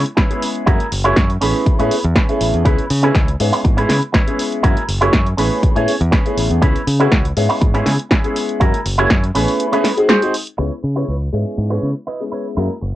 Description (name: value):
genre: filtered disco house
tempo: 121 BPM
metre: 4/4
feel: straight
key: C# minor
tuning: A4 = 442 Hz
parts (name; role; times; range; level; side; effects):
- modern bright fingered electric bass; bass; 0.0-13.0 s; F#1 to C#3; -18 LUFS; equal; sidechain pumping, low-pass filter
- punchy analog drum machine; drums; 0.1-10.6 s; hi-hat, snare drum; -20 LUFS; equal; sidechain pumping on hats
- electric guitar with an envelope filter; riff; 0.2-12.9 s; C#4 to D#5; -20 LUFS; right 3 dB; sidechain pumping, low-pass filter, cassette tape
- electronic kick drum; drums; 0.2-9.2 s; none; -15 LUFS; equal; none
- warm concert grand piano; accompaniment; 0.3-12.7 s; G#3 to G#4; -20 LUFS; left 2 dB; phaser, sidechain pumping, low-pass filter, cassette tape
room: light reverb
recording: home recording on cassette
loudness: -14 LUFS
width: side -14 dB against mid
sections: 0.0-10.6 A section; 10.6-13.0 B section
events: band accent 10.1; filter sweep 10.6-13.0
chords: 0.0 C#m7; 0.7 F#9; 1.4 Amaj9; 2.7 C#m7; 4.6 F#9; 5.4 Amaj9; 6.6 C#m7; 8.6 F#9; 9.4 Amaj9; 10.1 G#7; 10.6 C#m7